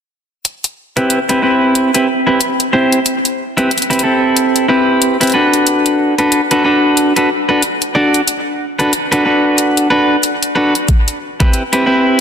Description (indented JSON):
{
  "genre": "glitch hop",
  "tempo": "92 BPM",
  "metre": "4/4",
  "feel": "swing 59% on 16ths",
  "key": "A dorian",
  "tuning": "A4 = 440 Hz",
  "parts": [
    { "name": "electronic hi-hat", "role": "drums", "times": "0.5-11.8 s", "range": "none", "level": "-16 LUFS", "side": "left 2 dB", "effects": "overdrive, small room ambience" },
    { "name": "clean electric guitar", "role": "stabs", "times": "1.0-12.2 s", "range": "C4 to D5", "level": "-11 LUFS", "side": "equal", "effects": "vintage 12-bit sampler grit, sidechain pumping, low-pass filter, dub echo" },
    { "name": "electronic kick drum", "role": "drums", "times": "10.9-11.5 s", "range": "none", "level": "-11 LUFS", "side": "equal", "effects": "overdrive, small room ambience" }
  ],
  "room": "wet lush hall reverb, RT60 1.8 s, digital ambience",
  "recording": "dense, heavily limited modern master",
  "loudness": "-11 LUFS",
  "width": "side -7 dB against mid",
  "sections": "0.5-12.2 A section",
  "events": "none",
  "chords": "0.5 Am9; 5.7 Bm7; 10.9 Am9 (rootless)"
}